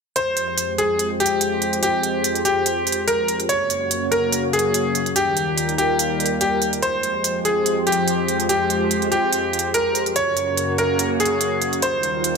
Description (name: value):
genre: heavy wobble dubstep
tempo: 144 BPM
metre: 4/4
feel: swing 54% on 16ths, half-time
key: F minor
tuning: A4 = 441 Hz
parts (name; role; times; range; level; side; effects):
- bright concert grand piano; melody; 0.2-12.4 s; G4 to Db5; -20 LUFS; left 1 dB; ping-pong delay
- supersaw pad; sustained chords; 0.2-12.4 s; Eb2 to Db5; -23 LUFS; right 1 dB; phaser, low-pass filter
- electronic hi-hat; drums; 0.2-12.3 s; none; -23 LUFS; right 4 dB; studio reverb
room: moderate lush hall reverb, RT60 1.8 s, small room reverb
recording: none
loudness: -18 LUFS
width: side -5 dB against mid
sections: 0.2-12.4 A section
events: filter sweep on supersaw synth 0.2-12.4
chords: 0.2 Fmadd9; 3.5 Gb; 5.2 Ebadd9; 6.8 Fmadd9; 10.2 Gb; 11.8 Ebadd9